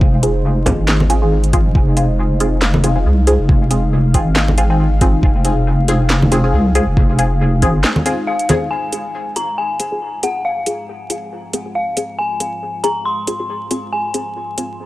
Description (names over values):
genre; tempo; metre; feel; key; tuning
deep dubstep; 138 BPM; 4/4; swing 56% on 16ths, half-time; F minor; A4 = 441 Hz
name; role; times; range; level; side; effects
deep dark ambient pad; sustained chords; 0.0-14.9 s; Ab3 to F5; -25 LUFS; left 2 dB; chorus, built-in reverb
deep soft wobble bass; bass; 0.0-7.8 s; F1 to C2; -14 LUFS; equal; chorus
electronic kick drum; drums; 0.0-7.7 s; none; -14 LUFS; equal; none
filtered dub chord stab; stabs; 0.2-14.6 s; C4 to Ab4; -21 LUFS; equal; phaser, wide subtle chorus, vintage 12-bit sampler grit, dub echo
garage drum kit; drums; 0.2-14.7 s; handclaps, hi-hat, snare drum; -20 LUFS; equal; none
congas; percussion; 0.7-8.6 s; none; -18 LUFS; right 1 dB; none
dark detuned synth bell; melody; 8.3-14.8 s; F5 to C6; -21 LUFS; left 1 dB; chorus, dub echo
room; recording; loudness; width
digital ambience; dry, gritty hardware recording, vinyl crackle; -14 LUFS; side -17 dB against mid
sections
0.0-8.7 A section; 8.7-14.9 B section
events
filter sweep on ambient pad 8.7-14.9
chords
0.0 Fm